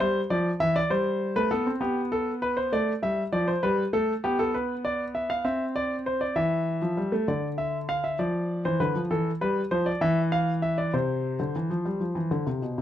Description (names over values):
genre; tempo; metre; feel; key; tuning
classical, baroque-style two-part invention for grand piano; 66 BPM (dotted quarters); 12/8; straight; C major; A4 = 440 Hz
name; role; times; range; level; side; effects
clear grand piano; solo; 0.0-12.8 s; B2 to F5; -24 LUFS; equal; none
room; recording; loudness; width
light reverb; dark, warm production; -24 LUFS; side -11 dB against mid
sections
0.0-7.3 A section; 7.3-12.8 B section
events
none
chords
0.0 C; 1.8 G/B; 3.6 G; 5.5 C; 7.3 Bdim/D (rootless); 9.1 Am/E; 10.0 Dmadd9/E; 10.9 Dm9